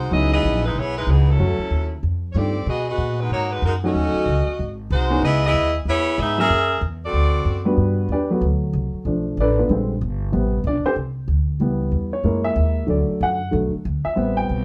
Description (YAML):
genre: jazz, big band swing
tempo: 188 BPM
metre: 4/4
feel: swing 63% on 8ths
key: unclear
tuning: A4 = 439 Hz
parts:
  - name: warm saxophone section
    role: melody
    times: 0.0-7.6 s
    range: E3 to E5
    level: -24 LUFS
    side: equal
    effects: none
  - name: upright bass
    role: bass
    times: 0.0-14.6 s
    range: G1 to B2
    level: -24 LUFS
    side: equal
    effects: none
  - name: warm upright piano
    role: accompaniment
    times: 0.1-14.6 s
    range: C3 to G5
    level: -24 LUFS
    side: equal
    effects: none
room: moderate studio ambience, RT60 0.5 s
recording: band playing live in one room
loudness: -21 LUFS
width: mono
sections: 0.0-7.8 A section; 7.8-14.6 B section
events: upright piano solo 7.8-14.6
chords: 0.1 C#m11; 1.4 F#m7; 2.0 F13; 2.7 Bmaj13; 4.0 D#m7b5; 4.6 G#7b13; 5.2 C#m9; 6.5 F#9; 7.1 D7; 7.8 Gmaj7; 9.1 Bm7b5; 9.7 Bb13; 10.3 Am7; 11.6 C#m7b5; 12.2 F#7; 12.9 Bm7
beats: | 0.12 0.43 0.75 1.07 | 1.39 1.71 2.03 2.35 | 2.67 2.99 3.31 3.63 | 3.95 4.27 4.59 4.91 | 5.23 5.55 5.87 6.18 | 6.50 6.82 7.14 7.46 | 7.78 8.10 8.42 8.73 | 9.05 9.37 9.69 10.01 | 10.33 10.65 10.97 11.29 | 11.61 11.93 12.25 12.57 | 12.89 13.21 13.53 13.85 | 14.17 14.49